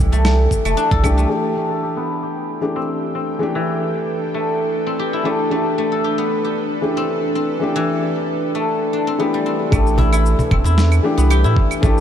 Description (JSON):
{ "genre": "organic downtempo", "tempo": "114 BPM", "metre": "4/4", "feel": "swing 53% on 16ths", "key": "A minor", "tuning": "A4 = 442 Hz", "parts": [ { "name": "felt-muted upright piano", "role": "accompaniment", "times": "0.0-12.0 s", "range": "E3 to G4", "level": "-22 LUFS", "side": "left 2 dB", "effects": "sidechain pumping, tape echo" }, { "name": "guzheng", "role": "arpeggios", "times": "0.0-12.0 s", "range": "E3 to A4", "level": "-22 LUFS", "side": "left 2 dB", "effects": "low-pass filter, tape echo" }, { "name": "round analog bass", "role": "bass", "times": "0.0-1.3, 9.7-12.0 s", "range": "E1 to A2", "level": "-15 LUFS", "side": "right 1 dB", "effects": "none" }, { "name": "electronic cabasa, snare drum and claves", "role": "drums", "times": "0.1-1.3, 9.7-12.0 s", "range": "none", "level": "-25 LUFS", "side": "right 1 dB", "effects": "overdrive, low-pass filter on perc, small room reverb, low-pass filter on snare" }, { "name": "cajon", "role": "percussion", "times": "0.1-0.2, 10.0-10.7 s", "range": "none", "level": "-22 LUFS", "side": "left 2 dB", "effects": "none" }, { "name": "electronic kick drum", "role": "drums", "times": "0.5-1.2, 9.7-11.9 s", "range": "none", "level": "-17 LUFS", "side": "right 1 dB", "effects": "overdrive, small room reverb" }, { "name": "bowed-like drone", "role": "sustained chords", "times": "2.5-12.0 s", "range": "D4 to G5", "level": "-25 LUFS", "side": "right 2 dB", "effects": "built-in reverb, sidechain pumping" } ], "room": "moderate huge ambient reverb, RT60 4.9 s", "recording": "dark, warm production", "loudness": "-16 LUFS", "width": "side -9 dB against mid", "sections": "0.0-1.3 A section; 1.3-9.7 B section; 9.7-12.0 C section", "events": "filter sweep on guzheng 1.3-9.7", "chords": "0.0 Fmaj9 (rootless); 1.3 Am11", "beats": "0.25 0.78 | 1.30 1.83 2.35 2.88 | 3.41 3.93 4.46 4.99 | 5.51 6.04 6.57 7.09 | 7.62 8.14 8.67 9.20 | 9.72 10.25 10.78 11.30 | 11.83" }